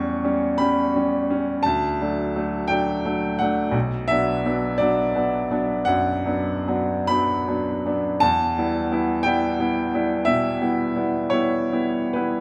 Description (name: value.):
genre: classical, romantic nocturne for solo piano.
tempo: 46-59 BPM (dotted quarters).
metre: 12/8.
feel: rubato.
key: unclear.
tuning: A4 = 441 Hz.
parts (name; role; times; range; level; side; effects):
bright grand piano; solo; 0.0-12.4 s; B1 to C#6; -22 LUFS; equal; none.
room: moderate recital hall reverb, RT60 1.4 s.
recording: close, detailed microphones.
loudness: -22 LUFS.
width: mono.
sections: 0.0-12.4 A section.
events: none.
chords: 0.0 C#dim/E; 1.6 D; 3.7 Bm; 8.2 Em.